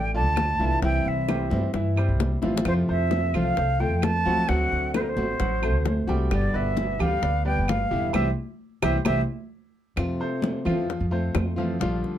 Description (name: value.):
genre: latin, Cuban son and guajira.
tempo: 131 BPM.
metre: 4/4.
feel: straight.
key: F major.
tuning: A4 = 440 Hz.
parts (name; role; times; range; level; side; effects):
concert flute; melody; 0.0-9.2 s; Bb4 to A5; -27 LUFS; right 2 dB; none.
clear grand piano; arpeggios; 0.0-12.2 s; E3 to G5; -31 LUFS; equal; none.
upright bass; bass; 0.0-12.0 s; E1 to G2; -26 LUFS; equal; none.
flamenco guitar; accompaniment; 0.1-12.2 s; B2 to G4; -30 LUFS; left 2 dB; none.
congas; percussion; 0.1-12.2 s; none; -31 LUFS; right 1 dB; none.
bongos; percussion; 0.4-12.2 s; none; -31 LUFS; left 6 dB; none.
claves; percussion; 0.4-11.6 s; none; -36 LUFS; right 5 dB; none.
room: moderate small room reverb, RT60 0.5 s.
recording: dark, warm production.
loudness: -22 LUFS.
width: side -11 dB against mid.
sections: 0.0-10.0 A section; 10.0-12.2 B section.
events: drum fill 2.4; band accent 8.1-10.0.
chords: 0.0 Dm; 0.8 C; 2.7 F; 4.5 D7; 6.3 G; 8.1 C; 10.0 Fmaj7.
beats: 0.37 | 0.83 1.28 1.74 2.20 | 2.66 3.11 3.57 4.03 | 4.49 4.94 5.40 5.86 | 6.32 6.77 7.23 7.69 | 8.15 8.60 9.06 9.52 | 9.98 10.44 10.89 11.35 | 11.81.